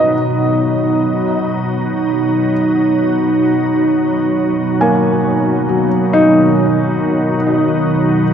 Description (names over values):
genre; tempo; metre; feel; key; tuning
ambient; free time; none; none; unclear; A4 = 441 Hz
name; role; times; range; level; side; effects
soft additive organ-like pad; sustained chords; 0.0-8.3 s; Cb3 to Eb4; -13 LUFS; right 1 dB; ensemble chorus, built-in reverb
felt-muted upright piano; arpeggios; 0.0-8.3 s; Gb3 to Ab5; -17 LUFS; left 1 dB; tape echo
room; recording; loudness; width
wet cathedral reverb, RT60 5.6 s; in a vast, echoing space; -12 LUFS; side -8 dB against mid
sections
0.0-8.3 A section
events
none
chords
0.0 Cbmaj7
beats
free time